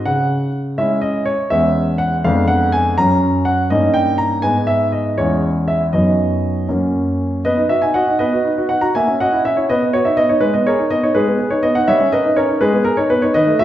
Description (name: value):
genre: classical-period piano sonatina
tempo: 82 BPM (dotted quarters)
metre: 6/8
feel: straight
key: B major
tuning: A4 = 440 Hz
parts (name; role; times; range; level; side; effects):
- warm concert grand piano; solo; 0.0-13.6 s; E2 to A#5; -14 LUFS; equal; none
room: wet recital hall reverb, RT60 1.3 s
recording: heard from further back in the room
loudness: -14 LUFS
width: side -12 dB against mid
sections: 0.0-7.5 A section; 7.5-13.6 B section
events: none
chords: 0.1 C#m; 1.5 C#m7/E; 2.2 Fdim7; 3.0 F#; 3.7 D#7/G; 4.4 G#m; 5.2 C#m/E; 5.9 B/F#; 6.7 F#; 7.5 B; 8.9 F#7/A#; 9.7 B; 10.4 G#m; 11.9 D#7/G; 12.6 G#m